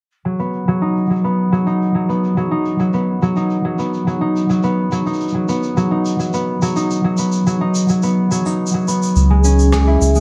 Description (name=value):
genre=folktronica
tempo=106 BPM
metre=4/4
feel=straight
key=unclear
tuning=A4 = 440 Hz
part: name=shaker and rim click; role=drums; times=0.1-10.2 s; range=none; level=-31 LUFS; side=equal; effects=low-pass filter on snare, low-pass filter on perc, low-pass filter on room
part: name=concert harp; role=arpeggios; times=0.3-10.2 s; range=F#3 to E4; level=-18 LUFS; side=equal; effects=low-pass filter, delay
part: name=round analog bass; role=bass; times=9.2-10.2 s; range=C#2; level=-14 LUFS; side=equal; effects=none
room=light reverb, small room ambience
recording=none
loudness=-17 LUFS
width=mono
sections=0.1-10.2 A section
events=none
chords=0.1 B/F#; 9.2 C#m7